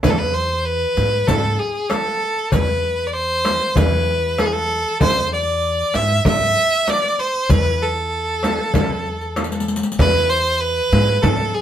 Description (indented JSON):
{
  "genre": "Arabic maqam ensemble",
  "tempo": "96 BPM",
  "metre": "4/4",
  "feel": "straight",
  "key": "E maqam hijaz",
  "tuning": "A4 = 440 Hz",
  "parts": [
    { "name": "clear violin", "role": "melody", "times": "0.0-11.6 s", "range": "G#4 to E5", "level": "-18 LUFS", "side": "equal", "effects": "none" },
    { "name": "upright bass", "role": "bass", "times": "0.0-11.5 s", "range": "E2 to G#2", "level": "-22 LUFS", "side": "equal", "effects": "none" },
    { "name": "darbuka", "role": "percussion", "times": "0.0-11.6 s", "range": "none", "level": "-22 LUFS", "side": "left 2 dB", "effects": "none" },
    { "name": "frame drum", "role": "percussion", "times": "0.0-11.4 s", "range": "none", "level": "-22 LUFS", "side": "right 1 dB", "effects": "none" },
    { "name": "riq", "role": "percussion", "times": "0.0-11.4 s", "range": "none", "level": "-28 LUFS", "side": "left 3 dB", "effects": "none" }
  ],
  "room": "moderate studio reverb, RT60 0.5 s",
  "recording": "band playing live in one room",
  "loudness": "-16 LUFS",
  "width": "side -10 dB against mid",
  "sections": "0.0-11.6 A section",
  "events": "drum fill 9.4-10.0",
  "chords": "none",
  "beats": "| 0.04 0.66 1.28 1.91 | 2.53 3.15 3.77 4.39 | 5.01 5.63 6.26 6.88 | 7.50 8.12 8.74 9.37 | 9.99 10.61 11.24"
}